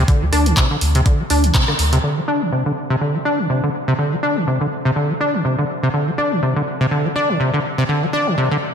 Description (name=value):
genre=acid house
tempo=123 BPM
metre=4/4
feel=swing 56% on 16ths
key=unclear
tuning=A4 = 441 Hz
part: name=acid bass, saw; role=riff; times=0.0-8.6 s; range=C3 to D4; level=-17 LUFS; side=equal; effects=tube saturation, analog chorus, sidechain pumping, tape echo
part: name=warm sub bass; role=bass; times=0.0-2.0 s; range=D2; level=-16 LUFS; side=equal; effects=tube saturation, sidechain pumping
part: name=electronic kick drum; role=drums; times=0.1-1.7 s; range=none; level=-16 LUFS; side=equal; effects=small room ambience
part: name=punchy analog drum machine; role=drums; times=0.1-2.0 s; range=handclaps, hi-hat, rim click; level=-22 LUFS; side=equal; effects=overdrive, low-pass filter on hats, small room ambience, low-pass filter on snare
room=wet lush hall reverb, RT60 2.4 s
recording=dreamy mix soaked in reverb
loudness=-16 LUFS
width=side -7 dB against mid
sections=0.0-2.0 A section; 2.0-8.7 B section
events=filter sweep on acid bass 0.0-2.0; band accent 1.5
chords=0.0 D7(no3); 2.0 Csus2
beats=| 0.08 0.57 1.06 1.55 | 2.04 2.52 3.01 3.50 | 3.99 4.47 4.96 5.45 | 5.94 6.42 6.91 7.40 | 7.89 8.38